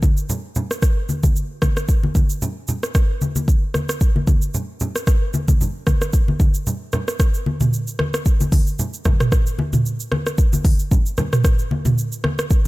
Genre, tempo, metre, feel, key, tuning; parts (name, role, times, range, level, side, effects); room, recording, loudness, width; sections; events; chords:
afrobeats; 113 BPM; 4/4; swing 55% on 16ths
afro-pop drum kit; drums; 0.0-12.7 s; hi-hat, kick drum, rim click, shaker, toms; -17 LUFS; equal
congas; percussion; 0.0-12.7 s; -23 LUFS; left 1 dB
little or no reverb; -17 LUFS; side -20 dB against mid
0.0-7.2 A section; 7.2-12.7 B section